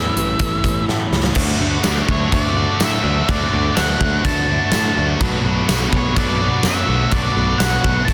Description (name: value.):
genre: rock, shoegaze and dream pop.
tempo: 125 BPM.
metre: 4/4.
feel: straight.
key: D major.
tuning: A4 = 438 Hz.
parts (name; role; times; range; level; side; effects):
octave-fuzz lead guitar; melody; 0.0-8.1 s; C#5 to A5; -25 LUFS; equal; distortion, slapback echo.
twelve-string electric guitar; arpeggios; 0.0-8.1 s; E3 to F#4; -33 LUFS; equal; none.
biting overdriven guitar; riff; 0.0-8.1 s; A2 to F#4; -25 LUFS; equal; reverse reverb.
thick fuzz guitar; riff; 0.0-8.1 s; A2 to D4; -27 LUFS; equal; distortion, ensemble chorus.
modern bright picked electric bass; bass; 0.0-8.1 s; A1 to A2; -25 LUFS; equal; none.
huge arena drum kit; drums; 0.2-8.1 s; crash cymbal, hi-hat, kick drum, snare drum; -22 LUFS; equal; none.
tambourine; percussion; 1.8-7.7 s; none; -32 LUFS; equal; none.
room: light reverb, studio ambience.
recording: dense, heavily limited modern master.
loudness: -18 LUFS.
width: mono.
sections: 0.0-1.4 A section; 1.4-8.1 B section.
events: drum fill 0.9-1.4.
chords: 0.0 Aadd9; 1.4 D; 5.2 Bm7.